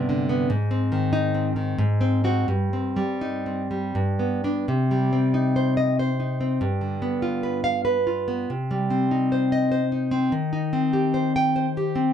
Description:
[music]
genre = romantic piece for solo classical guitar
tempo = 81-101 BPM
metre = 3/4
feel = rubato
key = C minor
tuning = A4 = 439 Hz
[part]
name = nylon-string guitar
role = solo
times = 0.0-12.1 s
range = G2 to G5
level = -21 LUFS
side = equal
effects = none
[sound]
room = light reverb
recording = dark, warm production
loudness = -21 LUFS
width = side -8 dB against mid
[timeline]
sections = 0.0-4.7 A section; 4.7-12.1 B section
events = none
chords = 0.5 Ab; 1.8 Ab7; 2.5 Cm/G; 4.0 G; 4.7 Cm; 6.6 G7; 8.5 Cm; 10.3 Cm/Eb

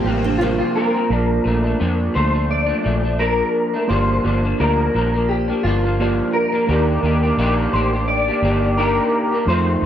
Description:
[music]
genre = indie pop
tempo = 86 BPM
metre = 4/4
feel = swing 55% on 16ths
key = unclear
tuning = A4 = 440 Hz
[part]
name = electric guitar through a small old amp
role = melody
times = 0.0-9.9 s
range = F4 to D5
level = -21 LUFS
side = left 1 dB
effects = ensemble chorus, analog delay
[part]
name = electric guitar through a small old amp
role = accompaniment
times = 0.0-9.9 s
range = F2 to G4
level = -22 LUFS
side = left 2 dB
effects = analog chorus, warbly pitch drift
[part]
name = mellow tine electric piano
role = accompaniment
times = 0.0-9.9 s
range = A3 to A5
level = -24 LUFS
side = right 4 dB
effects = medium stereo tremolo, cassette tape
[part]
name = string machine, violins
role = sustained chords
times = 0.0-1.1 s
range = C3 to F4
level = -29 LUFS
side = equal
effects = ensemble chorus
[part]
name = vintage muted fingered electric bass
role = bass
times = 0.0-9.9 s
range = G1 to F2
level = -21 LUFS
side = equal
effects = none
[part]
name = kalimba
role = second line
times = 0.2-0.9 s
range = D4 to C5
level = -30 LUFS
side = right 3 dB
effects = none
[sound]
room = light reverb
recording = none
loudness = -16 LUFS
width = side -10 dB against mid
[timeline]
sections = 0.0-1.1 A section; 1.1-9.9 B section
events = clean electric guitar solo 0.0-1.1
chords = 0.0 Gm11; 1.1 Bbmaj7; 3.9 Gm7; 6.7 Ebmaj7

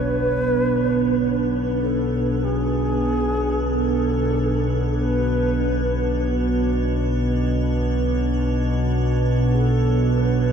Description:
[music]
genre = ambient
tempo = free time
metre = none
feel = none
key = B minor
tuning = A4 = 439 Hz
[part]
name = long shakuhachi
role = melody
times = 0.0-10.5 s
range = G#4 to B4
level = -26 LUFS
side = equal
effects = ping-pong delay
[part]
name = dark analog pad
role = sustained chords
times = 0.0-10.5 s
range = B3 to B4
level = -24 LUFS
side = right 2 dB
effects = chorus
[part]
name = analog drone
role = drone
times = 0.0-10.5 s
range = B1 to B2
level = -21 LUFS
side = equal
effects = chorus
[part]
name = icy glass pad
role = texture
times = 0.0-10.5 s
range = D4 to C#5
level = -37 LUFS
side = equal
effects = chorus, built-in reverb
[sound]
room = moderate huge ambient reverb, RT60 7.4 s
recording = dark, warm production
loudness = -19 LUFS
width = side -7 dB against mid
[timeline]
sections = 0.0-10.5 A section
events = none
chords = 0.0 Bmadd9

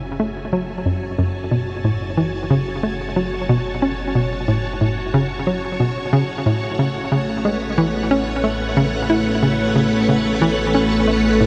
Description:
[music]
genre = ambient, sequencer-driven space music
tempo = 91 BPM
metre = 4/4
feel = straight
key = unclear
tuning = A4 = 439 Hz
[part]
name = string machine, full ensemble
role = sustained chords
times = 0.0-11.5 s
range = A3 to A5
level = -24 LUFS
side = equal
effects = ensemble chorus
[part]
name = fat analog bass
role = bass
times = 0.0-11.5 s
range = F#1 to A1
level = -31 LUFS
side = equal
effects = none
[part]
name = hollow square pluck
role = riff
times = 0.2-11.5 s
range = F#2 to E4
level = -22 LUFS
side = equal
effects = chorus, delay
[sound]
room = wet huge ambient reverb, RT60 7.8 s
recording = in a vast, echoing space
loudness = -20 LUFS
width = mono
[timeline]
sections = 0.0-11.5 A section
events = fade-in on string machine 0.0-11.5; fade-in on analog synth bass 0.0-11.5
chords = 0.0 F#m7; 6.5 A6

